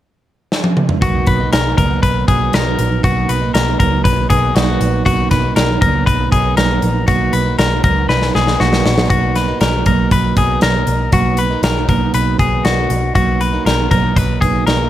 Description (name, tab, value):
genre	jangly indie pop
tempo	119 BPM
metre	4/4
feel	straight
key	B major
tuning	A4 = 440 Hz
part	big rock drum kit	drums	0.5-14.8 s	hi-hat, kick drum, snare drum, toms	-17 LUFS	equal	none
part	picked twelve-string acoustic guitar	accompaniment	1.0-14.9 s	B2 to D#4	-20 LUFS	right 7 dB	none
part	clean electric guitar	arpeggios	1.0-14.9 s	F#4 to B4	-18 LUFS	left 4 dB	analog delay
part	vintage muted picked electric bass	bass	1.0-14.9 s	A#1 to C#2	-18 LUFS	equal	none
room	little or no reverb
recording	none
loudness	-12 LUFS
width	side -12 dB against mid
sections	0.0-1.0 A section; 1.0-9.1 B section; 9.1-14.9 C section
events	drum fill 0.5-1.0, 8.1-9.1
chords	0.0 N.C.; 1.0 Bmaj7